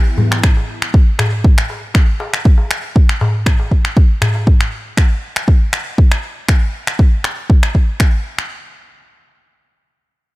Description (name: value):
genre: afro house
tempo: 119 BPM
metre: 4/4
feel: swing 53% on 16ths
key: none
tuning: none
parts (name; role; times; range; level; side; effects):
- darbuka; percussion; 0.2-4.4 s; none; -18 LUFS; left 1 dB; none
- electronic finger snaps; drums; 0.3-8.5 s; none; -21 LUFS; left 1 dB; none
- electronic kick drum; drums; 0.4-8.1 s; none; -10 LUFS; equal; overdrive
room: small room ambience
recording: none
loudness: -12 LUFS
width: side -20 dB against mid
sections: 0.0-8.5 A section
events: none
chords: none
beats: | 0.43 0.94 1.44 1.95 | 2.45 2.96 3.46 3.96 | 4.47 4.97 5.48 5.98 | 6.49 6.99 7.49 8.00